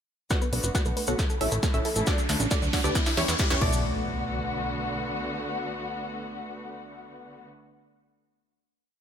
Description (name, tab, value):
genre	uplifting trance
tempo	136 BPM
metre	4/4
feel	straight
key	B minor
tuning	A4 = 439 Hz
part	wide unison pluck	melody	0.3-7.5 s	C#4 to F#5	-32 LUFS	right 1 dB	sidechain pumping, tape echo
part	analog pluck	second line	0.3-7.5 s	D4 to F#5	-36 LUFS	right 2 dB	wide subtle chorus, sidechain pumping, tape echo
part	muted studio string section	sustained chords	0.3-7.5 s	C#3 to F#4	-33 LUFS	left 1 dB	sidechain pumping
part	tight sequenced synth	arpeggios	0.3-4.0 s	A3 to C#5	-37 LUFS	equal	chorus, phaser, sidechain pumping, tape echo
part	electronic kick drum	drums	0.3-3.7 s	none	-27 LUFS	equal	none
part	punchy analog drum machine	drums	0.3-3.7 s	crash cymbal, hi-hat, snare drum	-32 LUFS	equal	high-pass filter on snare, high-pass filter on hats, high-pass filter on cymbals, high-pass filter on room
part	cabasa	percussion	0.3-3.8 s	none	-35 LUFS	left 1 dB	none
part	riser and impact	sound effects	1.3-7.5 s	none	-36 LUFS	left 1 dB	none
part	plucky analog bass	bass	0.5-5.1 s	F#1 to E2	-31 LUFS	equal	sidechain pumping
room	light reverb, digital ambience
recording	none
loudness	-24 LUFS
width	side -8 dB against mid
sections	0.3-3.8 build; 3.8-7.4 final hit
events	build-up 0.3-3.8; drum fill 0.3-3.8; filter sweep on synth pluck 0.3-3.8; filter sweep on synth arpeggio sound 0.3-3.8; riser 1.3-3.8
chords	0.3 Bm7; 1.2 A; 2.1 Dmaj7; 3.0 Em7; 3.6 Bm7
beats	| 0.31 0.75 1.19 1.63 | 2.07 2.51 2.95 3.39 | 3.83 4.28 4.72 5.16 | 5.60 6.04 6.48 6.92